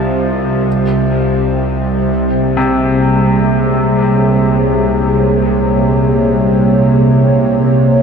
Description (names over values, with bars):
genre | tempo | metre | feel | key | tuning
dark ambient drone | free time | none | none | unclear | A4 = 440 Hz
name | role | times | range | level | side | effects
dark analog pad | sustained chords | 0.0-8.0 s | C3 to Eb5 | -14 LUFS | right 1 dB | chorus
bright grand piano | arpeggios | 0.0-8.0 s | C3 to F3 | -20 LUFS | left 2 dB | diffuse ambient delay
bowed-like drone | drone | 0.0-8.0 s | C2 to C3 | -13 LUFS | equal | built-in reverb
room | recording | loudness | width
wet huge ambient reverb, RT60 8.4 s | none | -10 LUFS | side -6 dB against mid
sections
0.0-8.0 A section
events
none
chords
0.0 Cm; 0.7 Bbm7/C